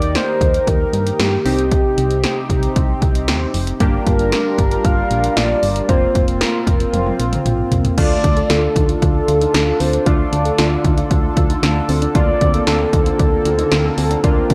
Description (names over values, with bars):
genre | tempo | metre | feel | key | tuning
synth-pop | 115 BPM | 4/4 | straight | unclear | A4 = 440 Hz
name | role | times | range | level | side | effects
mellow horn-like synth lead | melody | 0.0-14.5 s | G4 to F5 | -22 LUFS | equal | chorus, diffuse ambient delay
warm analog keys | accompaniment | 0.0-14.5 s | A3 to G4 | -27 LUFS | equal | chorus, phaser
chorused pulse-width pad | sustained chords | 0.0-14.5 s | C3 to Bb4 | -26 LUFS | equal | none
solid FM bass | bass | 0.0-14.5 s | F1 to G2 | -22 LUFS | equal | none
punchy analog drum machine | drums | 0.0-14.5 s | crash cymbal, hi-hat, kick drum, snare drum, toms | -21 LUFS | equal | none
soft round pluck | arpeggios | 8.0-14.5 s | C4 to A4 | -29 LUFS | equal | none
room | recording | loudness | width
moderate plate reverb, RT60 2.0 s, digital ambience | dreamy mix soaked in reverb | -16 LUFS | mono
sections
0.0-8.0 A section; 8.0-14.5 B section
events
drum fill 6.9-8.0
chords
0.0 Eb; 1.5 Cm; 3.8 Gm7; 5.9 Fsus4; 8.0 Dm; 12.2 Bbmaj7/D